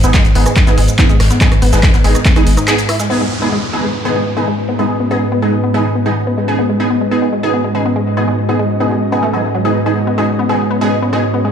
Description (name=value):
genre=driving peak-time techno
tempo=142 BPM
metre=4/4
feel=straight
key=G# minor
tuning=A4 = 442 Hz
part: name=resonant blip pluck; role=riff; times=0.0-11.5 s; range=F#3 to G#4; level=-19 LUFS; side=left 2 dB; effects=chorus, overdrive, sidechain pumping, ping-pong delay
part: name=rave stab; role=stabs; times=0.0-11.2 s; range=B3 to G#4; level=-18 LUFS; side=right 3 dB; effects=chorus, built-in reverb, phaser, sidechain pumping, dub echo
part: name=warm sub bass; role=bass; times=0.0-2.6 s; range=G#1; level=-14 LUFS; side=equal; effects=tube saturation, sidechain pumping, low-pass filter
part: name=deep dark ambient pad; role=drone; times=0.0-11.5 s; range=G#2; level=-19 LUFS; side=equal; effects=chorus, built-in reverb, sidechain pumping
part: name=punchy analog drum machine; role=drums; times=0.0-3.1 s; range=handclaps, hi-hat, rim click, shaker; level=-18 LUFS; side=right 1 dB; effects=overdrive, sidechain pumping on hats, sidechain pumping on perc
part: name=electronic kick drum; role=drums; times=0.1-2.3 s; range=none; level=-12 LUFS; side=equal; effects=overdrive
part: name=soft brush drum kit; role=drums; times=0.1-3.1 s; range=ride cymbal, snare drum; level=-26 LUFS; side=left 2 dB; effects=high-pass filter on cymbals, high-pass filter on snare, high-pass filter on room
part: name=downlifter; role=sound effects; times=3.1-6.5 s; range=none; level=-25 LUFS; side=equal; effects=none
part: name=ethereal airy pad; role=texture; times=4.3-11.5 s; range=G#3 to D#5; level=-20 LUFS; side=equal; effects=ensemble chorus, built-in reverb, sidechain pumping
room=light reverb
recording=played on a big sound system in a bare room, large studio reverb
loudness=-11 LUFS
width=side -8 dB against mid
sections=0.0-3.1 A section; 3.1-11.5 B section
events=break 2.7-3.1; band accent 2.7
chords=0.0 G#m